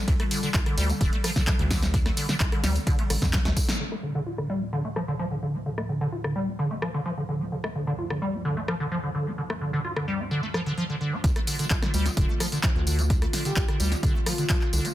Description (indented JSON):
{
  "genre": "acid house",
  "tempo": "129 BPM",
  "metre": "4/4",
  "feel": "straight",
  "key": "D minor",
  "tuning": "A4 = 440 Hz",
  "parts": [
    { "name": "warbly tape-like pad", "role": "sustained chords", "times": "0.0-14.9 s", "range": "D2 to A4", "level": "-36 LUFS", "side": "equal", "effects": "chorus, built-in reverb, tremolo, sidechain pumping" },
    { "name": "acid bass, square", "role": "riff", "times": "0.1-14.9 s", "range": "D2 to F4", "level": "-29 LUFS", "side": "equal", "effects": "lush chorus, dub echo" },
    { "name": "round analog bass", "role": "bass", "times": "0.1-3.5, 11.2-14.8 s", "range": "D1 to F2", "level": "-26 LUFS", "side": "equal", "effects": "tube saturation, sidechain pumping" },
    { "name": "electronic kick drum", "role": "drums", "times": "0.1-3.7, 11.2-14.6 s", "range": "none", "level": "-25 LUFS", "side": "equal", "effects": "overdrive" },
    { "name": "punchy analog drum machine", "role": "drums", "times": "0.1-14.9 s", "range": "handclaps, hi-hat, ride cymbal, rim click, snare drum, tambourine", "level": "-30 LUFS", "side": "left 1 dB", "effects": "overdrive, low-pass filter on snare, low-pass filter on hats, low-pass filter on perc, low-pass filter on cymbals" },
    { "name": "breathy flute-like synth lead", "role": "melody", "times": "13.5-14.9 s", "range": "F4 to G4", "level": "-36 LUFS", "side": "left 3 dB", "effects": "chorus, digital delay" }
  ],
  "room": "light reverb",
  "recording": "dense, heavily limited modern master",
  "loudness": "-24 LUFS",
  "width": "side -14 dB against mid",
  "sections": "0.0-3.8 A section; 3.8-11.2 B section; 11.2-14.9 A section",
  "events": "drop 0.0-3.8, 11.2-14.9; drum fill 3.3-3.8; band accent 3.7; filter sweep on drum 3.8-11.2; filter sweep on acid bass 3.8-11.2; filter sweep on ambient pad 3.8-11.2",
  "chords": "0.0 Dm",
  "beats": "| 0.08 0.54 1.01 1.47 | 1.94 2.40 2.87 3.33 | 3.80 4.26 4.73 5.19 | 5.66 6.12 6.59 7.05 | 7.52 7.99 8.45 8.91 | 9.38 9.85 10.31 10.78 | 11.24 11.71 12.17 12.64 | 13.10 13.57 14.03 14.50"
}